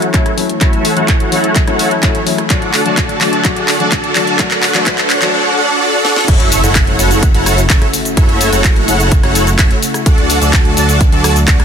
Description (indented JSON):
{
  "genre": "EDM, festival progressive house",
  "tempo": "127 BPM",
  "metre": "4/4",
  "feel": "straight",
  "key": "F# minor",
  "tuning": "A4 = 435 Hz",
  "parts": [
    { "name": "dark baby grand piano", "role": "accompaniment", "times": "0.0-5.3 s", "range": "F#3 to F#4", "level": "-20 LUFS", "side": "left 6 dB", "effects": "vintage 12-bit sampler grit, sidechain pumping, ping-pong delay" },
    { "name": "lush unison pad", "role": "sustained chords", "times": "0.0-11.6 s", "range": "C#3 to G#5", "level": "-21 LUFS", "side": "equal", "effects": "chorus, sidechain pumping" },
    { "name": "supersaw chords", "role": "riff", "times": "0.0-11.6 s", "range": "D4 to A5", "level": "-15 LUFS", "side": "right 1 dB", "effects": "ensemble chorus, sidechain pumping, low-pass filter, ping-pong delay" },
    { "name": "house drum kit", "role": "drums", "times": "0.0-11.6 s", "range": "crash cymbal, handclaps, hi-hat, rim click, shaker, snare drum", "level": "-16 LUFS", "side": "left 1 dB", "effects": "none" },
    { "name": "riser and impact", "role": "sound effects", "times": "0.8-8.2 s", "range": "none", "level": "-24 LUFS", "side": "right 1 dB", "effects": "none" },
    { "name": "electronic kick drum", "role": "drums", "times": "0.1-11.6 s", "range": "none", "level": "-12 LUFS", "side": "equal", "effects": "none" },
    { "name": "fat analog bass", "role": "bass", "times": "6.3-11.6 s", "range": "F#1 to D2", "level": "-16 LUFS", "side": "equal", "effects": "sidechain pumping" }
  ],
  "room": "light reverb, digital ambience",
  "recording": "dense, heavily limited modern master, high-pass filter",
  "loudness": "-9 LUFS",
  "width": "side -7 dB against mid",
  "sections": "0.0-6.3 A section; 6.3-11.6 B section",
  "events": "build-up 0.0-6.3; drum fill 0.0-5.3, 6.0; filter sweep on supersaw synth 0.0-6.3; filter sweep 0.0-6.3; drop 6.3-11.6; impact 6.3-8.2",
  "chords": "0.0 F#m7; 2.5 D; 6.3 F#m7; 10.1 D"
}